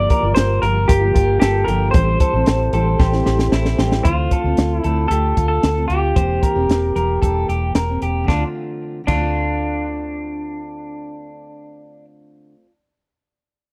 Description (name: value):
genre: jangly indie pop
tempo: 113 BPM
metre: 4/4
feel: straight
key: D minor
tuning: A4 = 441 Hz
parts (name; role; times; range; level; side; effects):
- electric guitar through a small old amp; melody; 0.0-12.0 s; D4 to D5; -24 LUFS; equal; none
- fingerpicked steel-string acoustic guitar; accompaniment; 0.0-12.7 s; D3 to G4; -29 LUFS; equal; none
- mellow reed electric piano; accompaniment; 0.0-4.1 s; F4 to C5; -29 LUFS; equal; tremolo
- electric guitar through a small old amp; arpeggios; 0.0-9.8 s; E4 to D5; -28 LUFS; equal; spring reverb
- vintage muted fingered electric bass; bass; 0.0-12.1 s; E1 to D2; -22 LUFS; equal; none
- compact cocktail drum kit; drums; 0.1-9.2 s; crash cymbal, hi-hat, kick drum, snare drum; -19 LUFS; equal; none
room: light reverb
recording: dry, close 1970s-style studio recording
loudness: -18 LUFS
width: mono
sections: 0.0-4.0 A section; 4.0-8.3 B section; 8.3-12.5 C section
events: drum fill 3.0-4.0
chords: 0.0 Gm7; 1.9 Am7; 4.0 Dm7; 6.2 C7/E; 8.3 Dm7